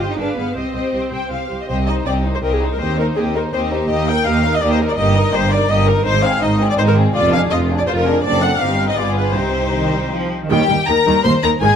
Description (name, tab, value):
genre	quick classical-period movement for string orchestra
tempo	164 BPM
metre	3/4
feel	straight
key	C minor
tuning	A4 = 440 Hz
part	rich studio violin section	melody	0.0-11.8 s	F4 to C6	-23 LUFS	left 5 dB	none
part	warm studio violin section	second line	0.0-11.8 s	Bb3 to C5	-22 LUFS	left 5 dB	none
part	rich studio viola section	accompaniment	0.0-11.8 s	Eb3 to G5	-20 LUFS	equal	none
part	clear studio cello section	bass	0.0-11.7 s	C2 to Eb4	-21 LUFS	right 3 dB	none
part	rich studio double bass section	bass	0.0-11.7 s	F1 to Eb2	-21 LUFS	right 2 dB	none
room	light reverb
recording	close, detailed microphones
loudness	-14 LUFS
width	side -8 dB against mid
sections	0.0-1.7 A section; 1.7-10.5 A section; 10.5-11.8 B section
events	none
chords	0.2 G7b9; 0.6 Cm; 2.8 Cm/Eb; 3.9 Eb; 5.0 Eb/G; 6.1 Ab; 7.1 Ddim/F; 8.2 D7/F#; 8.6 Cm/G; 9.0 G7b9; 9.4 Cm; 10.5 Eb